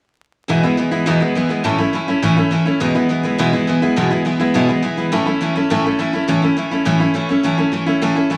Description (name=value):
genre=rock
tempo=208 BPM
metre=4/4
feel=straight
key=E major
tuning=A4 = 443 Hz
part: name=picked steel-string acoustic guitar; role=solo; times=0.5-8.4 s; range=E2 to E4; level=-17 LUFS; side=equal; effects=none
room=wet large studio reverb, RT60 1.1 s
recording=vinyl crackle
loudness=-17 LUFS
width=mono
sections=0.5-8.4 A section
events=none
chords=0.5 E; 1.7 A; 2.8 E; 5.1 A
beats=| 0.49 0.79 1.07 1.36 | 1.65 1.94 2.23 2.52 | 2.81 3.10 3.39 3.68 | 3.96 4.25 4.54 4.83 | 5.12 5.41 5.70 5.99 | 6.28 6.57 6.86 7.15 | 7.43 7.72 8.01 8.30